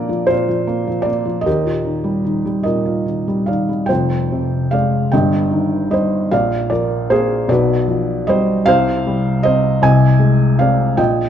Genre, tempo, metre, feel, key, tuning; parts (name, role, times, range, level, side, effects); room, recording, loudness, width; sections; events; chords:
classical, lyrical solo piano; 51 BPM (dotted quarters); 6/8; rubato; Eb major; A4 = 440 Hz
felt-muted upright piano; solo; 0.0-11.3 s; F1 to Ab5; -14 LUFS; equal
light reverb; dark, warm production; -14 LUFS; side -9 dB against mid
0.0-3.9 A section; 3.9-11.3 B section
0.0 Bbadd9; 1.5 Ebadd9; 3.9 Fm; 5.1 Eb/G; 6.3 Bb; 7.5 G7/B; 8.7 C5; 9.8 Ab/C